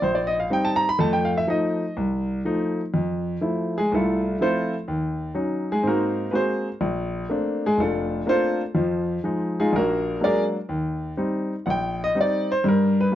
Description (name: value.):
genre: solo jazz.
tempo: 124 BPM.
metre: 4/4.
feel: swing 69% on 8ths.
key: unclear.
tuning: A4 = 441 Hz.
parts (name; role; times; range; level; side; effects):
clear grand piano; solo; 0.0-13.2 s; F1 to Cb6; -21 LUFS; equal; none.
room: light reverb.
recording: worn, warbling old tape, cassette tape, warbly pitch drift, nothing above 7.5 kHz.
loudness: -21 LUFS.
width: side -12 dB against mid.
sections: 0.0-2.9 A section; 2.9-13.2 A section.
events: grand piano solo 0.0-2.9, 2.9-13.2.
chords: 0.0 Eb6; 1.0 F7; 2.9 Fmaj7; 4.9 Ebm7; 5.8 Ab9; 6.8 Bbmaj9; 8.8 Fm7; 9.7 Bbaug7; 10.7 Eb6; 12.6 Gm.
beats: 0.02 0.51 | 0.99 1.48 1.96 2.45 | 2.93 3.42 3.90 4.39 | 4.87 5.36 5.84 6.33 | 6.82 7.30 7.79 8.27 | 8.76 9.24 9.72 10.21 | 10.69 11.18 11.66 12.15 | 12.63 13.12.